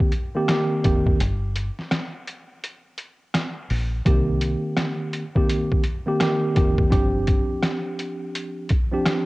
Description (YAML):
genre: hip hop, boom-bap hip-hop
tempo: 84 BPM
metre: 4/4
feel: swing 63% on 16ths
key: C minor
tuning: A4 = 435 Hz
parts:
  - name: mellow tine electric piano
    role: accompaniment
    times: 0.0-9.3 s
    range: Eb3 to G4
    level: -23 LUFS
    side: right 1 dB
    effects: medium stereo tremolo, high-pass filter, low-pass filter
  - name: trip hop sampler-style drum kit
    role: drums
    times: 0.0-9.3 s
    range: hi-hat, kick drum, rim click, snare drum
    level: -22 LUFS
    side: equal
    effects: overdrive, vintage 12-bit sampler grit, cassette tape
  - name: deep dub fingered electric bass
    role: bass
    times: 0.8-7.4 s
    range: F1 to C2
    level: -25 LUFS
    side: equal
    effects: tube saturation
room: light reverb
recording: home recording on cassette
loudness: -20 LUFS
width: side -21 dB against mid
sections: 0.0-4.1 A section; 4.1-9.3 A section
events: break 1.2-4.1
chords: 0.0 Cm7; 1.2 Gm; 4.1 Cm7; 6.9 G7sus4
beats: 0.49 | 1.20 1.92 2.63 3.35 | 4.06 4.77 5.49 6.20 | 6.92 7.63 8.35 9.06